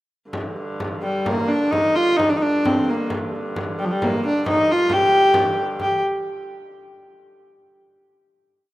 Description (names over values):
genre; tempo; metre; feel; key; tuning
medieval dance; 132 BPM; 3/4; straight; G minor; A4 = 440 Hz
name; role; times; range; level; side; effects
rich hurdy-gurdy; drone; 0.3-5.8 s; G2 to D3; -31 LUFS; right 1 dB; none
frame drum; percussion; 0.3-6.0 s; none; -29 LUFS; left 1 dB; none
warm viola da gamba; melody; 1.0-6.0 s; F3 to G4; -18 LUFS; equal; none
room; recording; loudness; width
moderate plate reverb, RT60 3.4 s; rough home demo mix; -18 LUFS; side -16 dB against mid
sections
0.3-5.8 A section; 5.8-7.1 final note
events
speeding up 0.3-7.1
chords
none